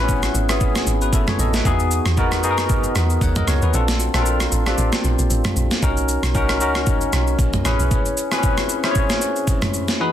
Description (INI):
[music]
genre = amapiano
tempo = 115 BPM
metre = 4/4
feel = swing 55% on 16ths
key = unclear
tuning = A4 = 441 Hz
[part]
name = barky tine electric piano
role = accompaniment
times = 0.0-10.1 s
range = E3 to F#5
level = -21 LUFS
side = left 2 dB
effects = lush chorus
[part]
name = deep log drum bass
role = bass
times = 0.0-7.9 s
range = G#1 to F#2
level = -21 LUFS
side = equal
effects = none
[part]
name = breakbeat sampler-style drum kit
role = drums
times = 0.1-10.0 s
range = kick drum, rim click, shaker, snare drum, toms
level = -21 LUFS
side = right 1 dB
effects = overdrive
[sound]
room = little or no reverb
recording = dense, heavily limited modern master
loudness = -17 LUFS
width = side -11 dB against mid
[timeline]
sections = 0.0-10.1 A section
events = kick muted 3.7-5.8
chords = 0.0 Amaj9; 1.7 Emaj9; 3.7 A#maj9; 5.8 Bmaj9; 7.7 Amaj9 (rootless)